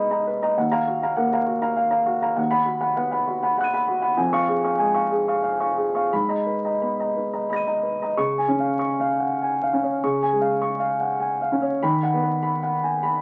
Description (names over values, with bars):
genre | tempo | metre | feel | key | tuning
neoclassical minimalist piano | 85-102 BPM | 3/4 | rubato | unclear | A4 = 439 Hz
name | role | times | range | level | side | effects
warm upright piano | solo | 0.0-13.2 s | Eb2 to D#7 | -23 LUFS | equal | none
room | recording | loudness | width
moderate studio reverb, RT60 0.6 s | very old 78 rpm record, vinyl crackle, nothing above 7.6 kHz | -23 LUFS | mono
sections
0.0-8.2 A section; 8.2-13.2 B section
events
none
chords
0.0 Abmadd9; 0.6 Ebmadd9; 2.4 B/D#; 4.2 Db/F; 6.1 Abmadd9; 8.2 Db; 11.8 B/D#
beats
| 0.56 1.17 1.77 | 2.38 2.98 3.58 | 4.18 4.78 5.42 | 6.11 6.80 7.50 | 8.16 8.79 9.41 | 10.02 10.61 11.21 | 11.82 12.43 13.04